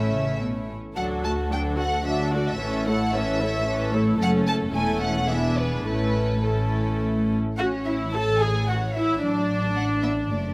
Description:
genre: quick classical-period movement for string orchestra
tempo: 103-113 BPM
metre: 3/4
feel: rubato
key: A major from 4.2 s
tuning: A4 = 436 Hz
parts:
  - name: warm studio violin section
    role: melody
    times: 0.0-10.5 s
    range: A4 to A5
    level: -33 LUFS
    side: equal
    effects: none
  - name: warm studio violin section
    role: second line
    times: 0.0-10.5 s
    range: E4 to A5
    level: -34 LUFS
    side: equal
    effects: none
  - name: rich studio viola section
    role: accompaniment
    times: 0.0-10.5 s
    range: E3 to A4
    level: -29 LUFS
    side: equal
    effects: none
  - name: warm studio cello section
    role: bass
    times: 0.0-10.5 s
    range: E2 to C#4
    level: -32 LUFS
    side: equal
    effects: none
  - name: warm studio double bass section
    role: bass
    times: 0.0-10.5 s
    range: E1 to D2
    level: -30 LUFS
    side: equal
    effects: none
room: moderate scoring stage reverb, RT60 1.6 s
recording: close, detailed microphones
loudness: -24 LUFS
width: mono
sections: 0.0-7.6 A section; 7.6-10.5 B section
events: none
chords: 0.0 A; 1.0 D; 2.6 A; 4.2 F#m; 4.7 A/E; 5.3 E7; 5.9 A; 9.2 D/A

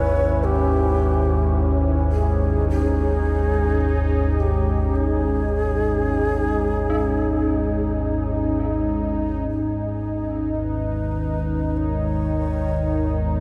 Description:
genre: dark ambient drone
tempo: free time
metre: none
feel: none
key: unclear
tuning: A4 = 440 Hz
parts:
  - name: breathy long shakuhachi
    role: melody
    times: 0.0-13.4 s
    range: G4 to C#5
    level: -29 LUFS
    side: equal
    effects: tape echo
  - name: sweeping resonant pad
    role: sustained chords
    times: 0.0-13.4 s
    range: G#2 to E4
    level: -26 LUFS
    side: equal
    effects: chorus
  - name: deep rumbling drone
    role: drone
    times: 0.0-13.4 s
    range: G#1 to D#2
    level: -25 LUFS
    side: equal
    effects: built-in reverb, subtle chorus
  - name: dark detuned synth bell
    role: arpeggios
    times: 6.9-13.4 s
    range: D#4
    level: -35 LUFS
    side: equal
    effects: none
room: wet cathedral reverb, RT60 5.7 s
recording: dark, warm production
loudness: -22 LUFS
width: mono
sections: 0.0-9.5 A section; 9.5-13.4 B section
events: fade-in on shakuhachi 9.5-13.4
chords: 0.0 C#m/G#; 9.5 G#m

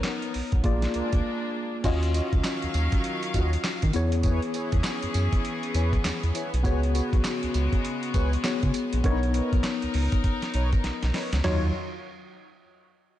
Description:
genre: R&B, new jack swing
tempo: 100 BPM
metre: 4/4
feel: swing 62% on 16ths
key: unclear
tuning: A4 = 440 Hz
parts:
  - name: tine electric piano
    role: accompaniment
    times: 0.0-11.7 s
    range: Gb3 to Eb5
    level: -30 LUFS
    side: left 3 dB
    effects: fast stereo tremolo, slapback echo
  - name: warm studio string section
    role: sustained chords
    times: 0.0-11.7 s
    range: Db3 to F5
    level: -33 LUFS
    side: left 1 dB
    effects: none
  - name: dusty soul sampler-style drum kit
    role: drums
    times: 0.0-11.6 s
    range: crash cymbal, handclaps, hi-hat, kick drum, snare drum, tambourine, toms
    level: -28 LUFS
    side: equal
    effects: vintage 12-bit sampler grit
  - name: round analog bass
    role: bass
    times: 0.4-11.7 s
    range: Bb1 to Eb3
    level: -25 LUFS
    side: equal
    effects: none
  - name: mellow synth brass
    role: stabs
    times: 0.9-11.7 s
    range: D#4 to Eb5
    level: -37 LUFS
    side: right 1 dB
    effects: chorus, tape echo
room: light reverb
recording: nothing above 10.7 kHz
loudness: -23 LUFS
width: side -13 dB against mid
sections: 0.0-1.8 A section; 1.8-11.4 B section; 11.4-13.2 C section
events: break 1.2-1.8; drum fill 10.8-11.4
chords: 0.0 Bmaj9; 0.6 Bb7; 1.8 Ebm9; 3.9 E6; 6.6 Db7sus4; 9.0 Bmaj9; 11.4 Ebm9

